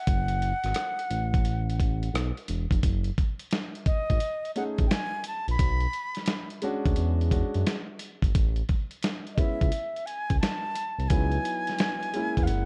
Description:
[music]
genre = hip hop, jazz-hop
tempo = 87 BPM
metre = 4/4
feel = swing 66% on 16ths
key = F# dorian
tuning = A4 = 441 Hz
[part]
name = breathy bright concert flute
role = melody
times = 0.0-12.7 s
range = D#5 to B5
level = -34 LUFS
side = equal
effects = none
[part]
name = smooth synth bass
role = bass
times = 0.1-12.7 s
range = E1 to F#2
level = -29 LUFS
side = equal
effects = none
[part]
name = dusty soul sampler-style drum kit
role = drums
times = 0.1-12.7 s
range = hi-hat, kick drum, rim click, snare drum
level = -29 LUFS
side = equal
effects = none
[part]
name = warm concert grand piano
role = accompaniment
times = 4.6-12.7 s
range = F#3 to G#4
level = -34 LUFS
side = equal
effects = none
[sound]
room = digital ambience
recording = worn, warbling old tape, cassette tape, warbly pitch drift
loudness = -28 LUFS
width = mono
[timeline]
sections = 0.0-2.8 A section; 2.8-12.7 B section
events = none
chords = 0.0 F#m; 2.8 F#m69; 5.6 Bmadd9; 7.0 E13; 8.3 Amaj7; 11.1 C#m11

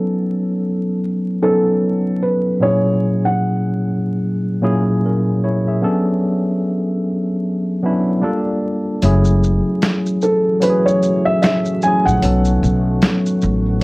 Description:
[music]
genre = lo-fi hip hop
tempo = 75 BPM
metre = 4/4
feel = swing 58% on 16ths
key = F# minor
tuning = A4 = 440 Hz
[part]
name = felt-muted upright piano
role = melody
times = 0.0-13.6 s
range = A4 to G#5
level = -18 LUFS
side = right 1 dB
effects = low-pass filter
[part]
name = mellow tine electric piano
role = accompaniment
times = 0.0-13.8 s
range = A#2 to E5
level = -16 LUFS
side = equal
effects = fast stereo tremolo, low-pass filter
[part]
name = deep dark ambient pad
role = sustained chords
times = 10.0-13.8 s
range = D#3 to F#4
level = -28 LUFS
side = equal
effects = chorus, built-in reverb, low-pass filter
[part]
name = upright bass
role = bass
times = 9.0-13.8 s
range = F#1 to B1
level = -16 LUFS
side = equal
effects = none
[part]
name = boom bap sampler-style drum kit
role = drums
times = 9.0-13.8 s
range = hi-hat, shaker, snare drum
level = -19 LUFS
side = equal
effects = vintage 12-bit sampler grit
[sound]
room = moderate studio reverb, RT60 0.6 s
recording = worn, warbling old tape, cassette tape, vinyl crackle, warbly pitch drift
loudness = -14 LUFS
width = side -24 dB against mid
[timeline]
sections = 0.0-9.0 A section; 9.0-13.8 B section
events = kick muted 9.0-13.8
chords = 0.0 B7; 2.6 F#7/A#; 5.8 Bm9; 8.2 Gm9; 9.0 F#m9; 12.2 B7

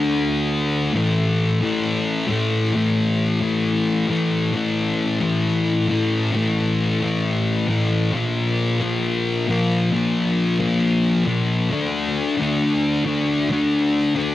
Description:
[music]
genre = rock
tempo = 134 BPM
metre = 4/4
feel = straight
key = unclear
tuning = A4 = 440 Hz
[part]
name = thick fuzz guitar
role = solo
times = 0.0-14.3 s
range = A2 to D4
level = -18 LUFS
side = left 1 dB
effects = distortion, wide subtle chorus
[sound]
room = light reverb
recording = home recording on cassette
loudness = -18 LUFS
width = side -14 dB against mid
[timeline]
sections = 1.0-14.3 A section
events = none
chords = 0.0 D5; 1.0 A5; 8.1 Bb5; 11.7 D5

